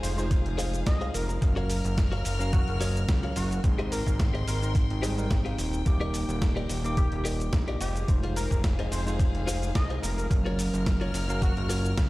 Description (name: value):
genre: nu-disco, nu disco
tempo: 108 BPM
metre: 4/4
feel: swing 54% on 16ths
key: unclear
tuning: A4 = 440 Hz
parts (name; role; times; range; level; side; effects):
- wide unison lead; melody; 0.0-11.7 s; Gb4 to Eb5; -38 LUFS; equal; dub echo
- bell-like tine electric piano; accompaniment; 0.0-12.1 s; Gb3 to D6; -34 LUFS; right 1 dB; sidechain pumping
- rich chamber string section; sustained chords; 0.0-12.1 s; Ab4 to F6; -39 LUFS; left 4 dB; sidechain pumping
- direct-recorded clean electric guitar; riff; 0.0-11.9 s; F4 to Ab5; -36 LUFS; left 2 dB; wide subtle chorus
- fat analog bass; bass; 0.0-12.1 s; Eb1 to Db2; -30 LUFS; equal; none
- dusty soul sampler-style drum kit; drums; 0.0-12.1 s; hi-hat, shaker, snare drum; -36 LUFS; equal; none
- electronic kick drum; drums; 0.3-12.1 s; none; -26 LUFS; equal; none
room: little or no reverb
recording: played on a big sound system in a bare room, stone room reverb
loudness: -24 LUFS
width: side -19 dB against mid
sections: 0.0-12.1 A section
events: none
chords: 0.0 Fm7; 1.4 Gbmaj7; 3.6 Abmaj7; 5.9 Ebmaj7; 7.8 Fm7; 10.3 Gbmaj7